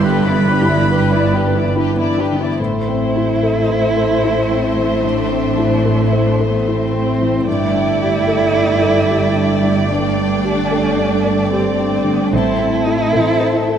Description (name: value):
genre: cinematic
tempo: 74 BPM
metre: 3/4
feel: rubato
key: A minor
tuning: A4 = 440 Hz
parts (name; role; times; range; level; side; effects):
- warm studio violin section; melody; 0.0-13.8 s; E5 to B5; -29 LUFS; left 4 dB; none
- warm oboe; second line; 0.0-1.7 s; B4; -23 LUFS; equal; none
- warm studio violin section; second line; 0.0-13.8 s; E4 to D5; -22 LUFS; left 2 dB; none
- felt-muted upright piano; accompaniment; 0.0-13.8 s; G2 to D5; -19 LUFS; left 3 dB; none
- warm studio viola section; accompaniment; 0.0-13.8 s; D3 to D4; -24 LUFS; right 1 dB; none
- warm studio cello section; bass; 0.0-13.8 s; G2 to A2; -22 LUFS; right 4 dB; none
- warm studio double bass section; bass; 0.0-13.8 s; G1 to A1; -22 LUFS; right 4 dB; none
- warm cello; melody; 2.6-13.8 s; B3 to E4; -19 LUFS; right 4 dB; none
room: moderate scoring stage reverb, RT60 1.9 s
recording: none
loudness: -13 LUFS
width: side -8 dB against mid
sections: 0.0-2.6 A section; 2.6-13.8 B section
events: none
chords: 0.0 Em7/G; 2.6 Am; 7.5 Gsus2; 12.3 Am